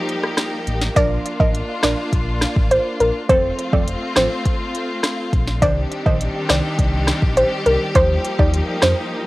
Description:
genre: dancehall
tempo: 103 BPM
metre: 4/4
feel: straight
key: C dorian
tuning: A4 = 440 Hz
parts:
  - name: clear studio string section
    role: sustained chords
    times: 0.0-9.3 s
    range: Eb3 to G4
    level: -24 LUFS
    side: left 1 dB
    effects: sidechain pumping, cassette tape
  - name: afro-pop drum kit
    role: drums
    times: 0.1-9.0 s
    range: hi-hat, kick drum, rim click, snare drum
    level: -20 LUFS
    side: equal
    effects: cassette tape
  - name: sub bass with octave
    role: bass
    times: 0.7-8.9 s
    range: F1 to F2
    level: -22 LUFS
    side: equal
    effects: none
  - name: soft round pluck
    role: melody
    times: 1.0-8.9 s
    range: Bb4 to Eb5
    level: -19 LUFS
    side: equal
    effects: chorus, cassette tape, tape echo
  - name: wavetable chord stab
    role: accompaniment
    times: 1.0-9.0 s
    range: Eb3 to C5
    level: -26 LUFS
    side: right 5 dB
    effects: cassette tape
room: little or no reverb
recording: home recording on cassette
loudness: -16 LUFS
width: side -19 dB against mid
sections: 0.0-9.3 A section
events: break 0.0-1.0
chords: 0.0 Ebadd9; 1.0 Bb; 3.3 F; 5.6 Cmadd9; 8.0 Ebadd9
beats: 0.38 | 0.96 1.55 2.13 2.71 | 3.29 3.88 4.46 5.04 | 5.62 6.21 6.79 7.37 | 7.95 8.54 9.12

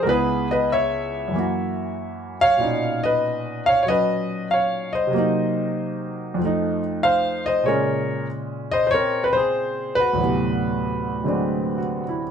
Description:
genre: jazz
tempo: 95 BPM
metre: 4/4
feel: swing 68% on 8ths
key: unclear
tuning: A4 = 440 Hz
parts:
  - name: warm concert grand piano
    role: solo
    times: 0.0-12.3 s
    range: Db2 to F5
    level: -20 LUFS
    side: equal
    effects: none
room: moderate studio reverb, RT60 0.6 s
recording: band playing live in one room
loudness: -20 LUFS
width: side -7 dB against mid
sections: 0.0-12.3 A section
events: none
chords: 0.1 Dbm7; 1.3 Gb7; 2.6 Cbmaj9; 5.1 Cm7b5; 6.4 F7; 7.7 Bbm7; 10.2 D13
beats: | 0.06 0.69 1.32 1.96 | 2.59 3.22 3.86 4.49 | 5.12 5.76 6.39 7.02 | 7.66 8.29 8.92 9.55 | 10.19 10.82 11.45 12.08

